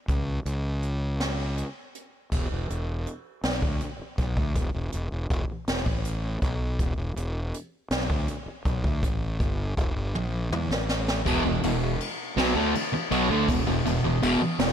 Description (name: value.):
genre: quiet-loud alternative rock.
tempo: 54 BPM (dotted quarters).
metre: 6/8.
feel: straight.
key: unclear.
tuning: A4 = 440 Hz.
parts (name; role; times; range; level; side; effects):
fuzz fingered electric bass; bass; 0.1-14.7 s; E1 to E2; -29 LUFS; equal; overdrive.
jazz brush drum kit; drums; 0.1-14.7 s; crash cymbal, hi-hat, kick drum, ride cymbal, snare drum, toms; -29 LUFS; equal; none.
fuzz guitar; riff; 11.3-14.7 s; E2 to A3; -24 LUFS; equal; distortion.
room: light reverb, small room ambience.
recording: none.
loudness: -25 LUFS.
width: side -9 dB against mid.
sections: 0.0-2.3 A section; 2.3-11.3 B section; 11.3-14.7 C section.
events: drum fill 10.1-11.3.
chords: 0.0 N.C.; 2.3 E5.